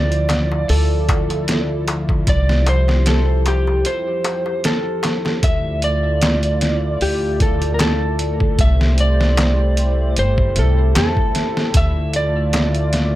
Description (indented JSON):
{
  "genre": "trip hop",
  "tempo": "76 BPM",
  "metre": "4/4",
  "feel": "swing 54% on 16ths",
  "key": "D minor",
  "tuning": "A4 = 440 Hz",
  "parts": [
    { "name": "electric slide guitar", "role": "melody", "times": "0.0-13.2 s", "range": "G4 to E5", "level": "-22 LUFS", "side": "equal", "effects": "tape echo" },
    { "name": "dark analog pad", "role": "sustained chords", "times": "0.0-13.2 s", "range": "F3 to D5", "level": "-26 LUFS", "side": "equal", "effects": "chorus, vintage 12-bit sampler grit" },
    { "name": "upright bass", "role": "bass", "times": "0.0-13.2 s", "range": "G1 to E2", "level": "-18 LUFS", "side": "equal", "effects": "tube saturation" },
    { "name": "trip hop sampler-style drum kit", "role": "drums", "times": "0.1-13.1 s", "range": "hi-hat, kick drum, snare drum", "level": "-20 LUFS", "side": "equal", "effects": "overdrive" },
    { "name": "darbuka", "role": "percussion", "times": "0.3-12.7 s", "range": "none", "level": "-27 LUFS", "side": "left 2 dB", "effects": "none" }
  ],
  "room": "little or no reverb",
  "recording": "none",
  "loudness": "-15 LUFS",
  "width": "side -15 dB against mid",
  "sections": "0.0-5.4 A section; 5.4-13.2 B section",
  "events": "break 3.9-5.4",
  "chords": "0.0 Dmadd9; 2.3 Am7/C; 5.4 Dmadd9; 8.6 Am7/C; 11.7 Dmadd9",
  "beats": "0.69 1.48 | 2.27 3.06 3.85 4.64 | 5.43 6.22 7.01 7.80 | 8.59 9.38 10.17 10.96 | 11.75 12.54"
}